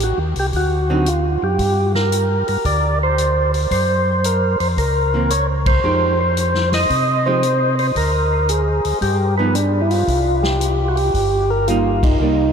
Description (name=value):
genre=soul jazz organ trio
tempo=113 BPM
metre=4/4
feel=swing 67% on 8ths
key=C minor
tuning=A4 = 440 Hz
part: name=percussive tonewheel organ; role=melody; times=0.0-12.5 s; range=D4 to Eb5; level=-18 LUFS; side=equal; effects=slow rotary speaker, diffuse ambient delay
part: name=tonewheel organ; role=bass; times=0.0-12.5 s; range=G1 to C3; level=-20 LUFS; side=equal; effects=chorus vibrato, slow rotary speaker
part: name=vintage drum kit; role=drums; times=0.0-12.1 s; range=hi-hat, kick drum, ride cymbal, snare drum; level=-25 LUFS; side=left 1 dB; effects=none
part: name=archtop guitar, miked and amplified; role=accompaniment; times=0.9-1.1, 5.1-12.5 s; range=D3 to G4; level=-26 LUFS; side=right 3 dB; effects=lush chorus
room=wet huge ambient reverb, RT60 8.1 s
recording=dreamy mix soaked in reverb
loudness=-15 LUFS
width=side -7 dB against mid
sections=0.0-12.5 A section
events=band accent 5.6, 11.9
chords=0.0 Am7b5; 0.5 D7b9; 1.6 Gm; 3.7 F#(#11); 5.8 Fm9; 8.0 Bb7/D; 9.0 G7b13; 10.1 Cm7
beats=0.00 0.53 1.06 | 1.59 2.12 2.66 3.19 | 3.72 4.25 4.78 5.31 | 5.84 6.37 6.90 7.43 | 7.96 8.49 9.02 9.55 | 10.09 10.62 11.15 11.68 | 12.21